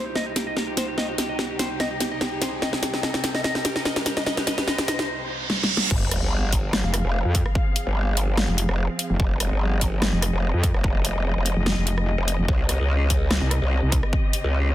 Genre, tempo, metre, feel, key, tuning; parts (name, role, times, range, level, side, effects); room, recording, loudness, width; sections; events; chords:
heavy wobble dubstep; 146 BPM; 4/4; half-time; F minor; A4 = 440 Hz
mellow electric guitar; melody; 0.0-5.1 s; G4 to Eb5; -30 LUFS; equal; phaser, dub echo
dark symphonic string section; sustained chords; 0.0-14.7 s; C2 to F5; -32 LUFS; equal; sidechain pumping, low-pass filter
riser, reverse cymbal and sub drop; sound effects; 0.1-7.6 s; -31 LUFS; right 2 dB
warbly tape-like pad; texture; 0.0-5.1 s; Eb4 to G5; -34 LUFS; right 1 dB; chorus, built-in reverb, sidechain pumping
dubstep drum kit; drums; 0.2-14.4 s; crash cymbal, hi-hat, rim click, snare drum; -25 LUFS; equal; studio reverb
growl bass; bass; 5.9-14.7 s; F1 to Db2; -22 LUFS; equal; chorus, overdrive
electronic kick drum; drums; 5.9-14.2 s; -23 LUFS; equal; overdrive, studio reverb
metallic wobble bass; bass; 6.8-14.0 s; F1 to F2; -22 LUFS; equal; chorus, overdrive
light reverb, digital ambience; dense, heavily limited modern master; -21 LUFS; side -13 dB against mid
0.0-5.9 A section; 5.9-14.7 B section
build-up 0.0-5.9; drum fill 0.0-5.1, 5.5-5.9; riser 0.1-5.1; reverse cymbal 5.1-5.9; drop 5.9-14.7; impact 5.9-7.6
0.0 Cm; 5.9 Fm; 12.5 Cm